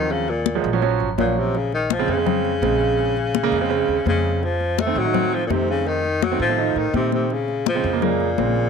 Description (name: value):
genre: Afro-Cuban jazz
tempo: 167 BPM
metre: 4/4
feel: straight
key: Bb minor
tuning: A4 = 440 Hz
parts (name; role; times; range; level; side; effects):
- breathy tenor saxophone; melody; 0.0-8.7 s; Bb2 to A3; -22 LUFS; left 4 dB; none
- warm concert grand piano; accompaniment; 0.0-8.7 s; Db3 to Eb4; -23 LUFS; right 12 dB; none
- upright bass; bass; 0.0-8.7 s; Ab1 to Bb2; -26 LUFS; equal; none
- congas; percussion; 0.1-8.7 s; none; -26 LUFS; left 18 dB; none
room: light reverb, small room ambience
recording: 1960s-style stereo with parts hard left and right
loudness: -18 LUFS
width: side -6 dB against mid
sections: 0.0-8.7 A section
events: none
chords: 0.0 Ebm7; 1.5 Bbm7; 4.4 F7; 7.3 Bbm7